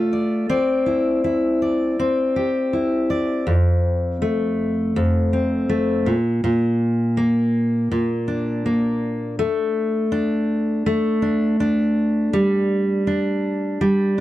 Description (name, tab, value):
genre	pop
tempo	81 BPM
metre	4/4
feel	straight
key	F major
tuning	A4 = 440 Hz
part	fingerpicked steel-string acoustic guitar	solo	0.0-14.2 s	F2 to D5	-18 LUFS	equal	none
room	moderate booth ambience, RT60 0.2 s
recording	dry, close 1970s-style studio recording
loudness	-18 LUFS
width	side -15 dB against mid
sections	0.0-3.5 A section; 3.5-14.2 B section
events	none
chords	0.5 Cadd9; 3.5 F; 6.1 Bb; 9.4 D5/A; 12.3 G5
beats	| 0.50 1.24 1.99 2.73 | 3.47 4.21 4.95 5.69 | 6.43 7.17 7.91 8.65 | 9.39 10.12 10.86 11.60 | 12.34 13.08 13.81